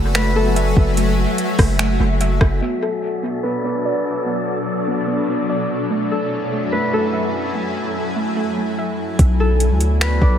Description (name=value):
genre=hip hop, atmospheric cloud-rap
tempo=146 BPM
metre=4/4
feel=half-time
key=unclear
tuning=A4 = 436 Hz
part: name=Celtic harp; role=melody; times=0.0-10.4 s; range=A4 to D5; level=-25 LUFS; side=left 2 dB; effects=low-pass filter, dub echo
part: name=granular cloud pad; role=sustained chords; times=0.0-10.4 s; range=F#2 to G#5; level=-22 LUFS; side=left 3 dB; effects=built-in reverb, sidechain pumping, low-pass filter
part: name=soft round pluck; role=arpeggios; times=0.0-9.2 s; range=A3 to E5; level=-25 LUFS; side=right 4 dB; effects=chorus, low-pass filter, dub echo
part: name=long sustained 808-style bass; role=bass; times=0.0-2.6, 9.2-10.4 s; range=F#1 to D2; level=-17 LUFS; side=equal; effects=none
part: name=wind-like tuned noise texture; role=texture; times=0.0-9.2 s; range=A3 to E5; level=-30 LUFS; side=right 1 dB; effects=built-in reverb
part: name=smooth R&B drum kit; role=drums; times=0.1-2.5, 9.2-10.3 s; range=finger snaps, hi-hat, kick drum, rim click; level=-18 LUFS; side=equal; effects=overdrive, dub echo
room=light reverb, digital ambience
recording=echo-heavy mix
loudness=-16 LUFS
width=side -9 dB against mid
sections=0.0-2.6 A section; 2.6-9.2 B section; 9.2-10.4 C section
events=filter sweep 2.6-9.2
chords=0.0 F#m7; 2.6 Bm7; 5.9 F#m7; 9.2 Bm7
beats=0.15 0.56 | 0.97 1.38 1.79 2.21 | 2.62 3.03 3.44 3.85 | 4.26 4.67 5.08 5.49 | 5.90 6.32 6.73 7.14 | 7.55 7.96 8.37 8.78 | 9.19 9.60 10.01